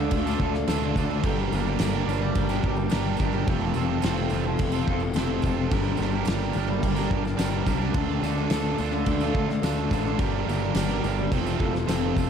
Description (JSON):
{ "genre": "rock, shoegaze and dream pop", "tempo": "107 BPM", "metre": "4/4", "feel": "straight", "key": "unclear", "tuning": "A4 = 440 Hz", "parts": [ { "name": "dark analog pad", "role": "sustained chords", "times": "0.0-12.3 s", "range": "G4 to D6", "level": "-36 LUFS", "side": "right 2 dB", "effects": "chorus, phaser" }, { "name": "electric guitar through a small old amp", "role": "arpeggios", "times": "0.0-12.3 s", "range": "F3 to A4", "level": "-33 LUFS", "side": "left 2 dB", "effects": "lush chorus, tape echo" }, { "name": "crunchy overdriven guitar", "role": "riff", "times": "0.0-12.3 s", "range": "D3 to Bb4", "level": "-30 LUFS", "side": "right 13 dB", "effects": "reverse reverb" }, { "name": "fuzz guitar", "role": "riff", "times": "0.0-12.3 s", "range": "F2 to D4", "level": "-29 LUFS", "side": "left 11 dB", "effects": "distortion, wide subtle chorus" }, { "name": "fuzz picked electric bass", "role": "bass", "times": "0.0-12.3 s", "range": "F1 to D2", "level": "-29 LUFS", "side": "equal", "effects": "overdrive" }, { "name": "loose indie drum kit", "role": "drums", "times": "0.1-12.3 s", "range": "crash cymbal, kick drum, snare drum", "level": "-30 LUFS", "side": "equal", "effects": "none" }, { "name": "tambourine", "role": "percussion", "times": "0.1-12.3 s", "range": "none", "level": "-48 LUFS", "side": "left 8 dB", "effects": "none" } ], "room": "small room ambience", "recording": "dark, warm production", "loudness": "-23 LUFS", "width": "side -7 dB against mid", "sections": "0.0-12.3 A section", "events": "none", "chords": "0.0 Dm; 1.2 Gmadd9; 3.5 Fadd9; 5.7 Gmadd9; 7.9 Dm; 10.2 Gmadd9; 11.3 F" }